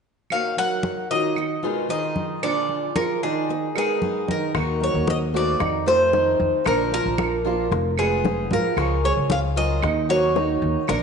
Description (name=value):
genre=latin, Cuban son and guajira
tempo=114 BPM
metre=4/4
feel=straight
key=Eb harmonic minor, Eb minor from 4.5 s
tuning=A4 = 440 Hz
part: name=Cuban tres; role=melody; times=0.3-11.0 s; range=Ab4 to Gb5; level=-24 LUFS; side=left 2 dB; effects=none
part: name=picked swing-style acoustic guitar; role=accompaniment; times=0.3-11.0 s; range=Bb2 to Bb4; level=-29 LUFS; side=left 7 dB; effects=none
part: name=claves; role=percussion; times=0.3-11.0 s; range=none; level=-34 LUFS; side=right 8 dB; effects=none
part: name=congas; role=percussion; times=0.3-11.0 s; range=none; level=-30 LUFS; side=left 2 dB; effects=none
part: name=warm concert grand piano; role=arpeggios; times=0.6-11.0 s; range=D3 to F5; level=-25 LUFS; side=right 8 dB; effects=none
part: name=upright bass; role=bass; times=4.5-11.0 s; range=F1 to Ab2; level=-25 LUFS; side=equal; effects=none
part: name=bongos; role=percussion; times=4.5-11.0 s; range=none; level=-32 LUFS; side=left 11 dB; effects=none
room=wet echo chamber reverb, RT60 1.9 s, studio reverb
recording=1960s-style stereo with parts hard left and right, nothing above 10.8 kHz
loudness=-20 LUFS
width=side -6 dB against mid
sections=0.3-4.5 A section; 4.5-11.0 B section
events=none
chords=0.3 Ebmadd9; 1.4 Fm7b5; 2.4 Bb7; 3.5 Abmadd9; 4.5 Ebm; 5.6 F7; 6.7 Bb; 7.7 Fdim; 8.8 Db; 9.8 Ebm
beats=| 0.31 0.84 1.37 1.90 | 2.43 2.96 3.49 4.02 | 4.55 5.08 5.60 6.13 | 6.66 7.19 7.72 8.24 | 8.77 9.30 9.83 10.36 | 10.88